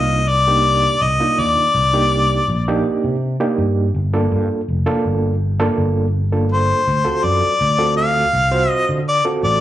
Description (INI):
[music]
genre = straight-eighth soul blues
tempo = 82 BPM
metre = 4/4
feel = straight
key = G minor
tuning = A4 = 440 Hz
[part]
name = warm harmonica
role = melody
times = 0.0-9.6 s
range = C5 to E#5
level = -16 LUFS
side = left 2 dB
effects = slapback echo, analog delay
[part]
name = overdriven reed electric piano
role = accompaniment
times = 0.0-9.6 s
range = Bb3 to C5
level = -20 LUFS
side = right 3 dB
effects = fast tremolo, slapback echo
[part]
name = sustaining fretless electric bass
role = bass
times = 0.0-9.6 s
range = F1 to D3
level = -19 LUFS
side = equal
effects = none
[sound]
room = little or no reverb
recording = live gig heard through the venue's PA, club reverb, nothing above 10.4 kHz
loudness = -15 LUFS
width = side -12 dB against mid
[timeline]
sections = 0.0-9.6 A section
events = none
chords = 0.0 Cm9; 3.9 Gm9; 6.9 D7#9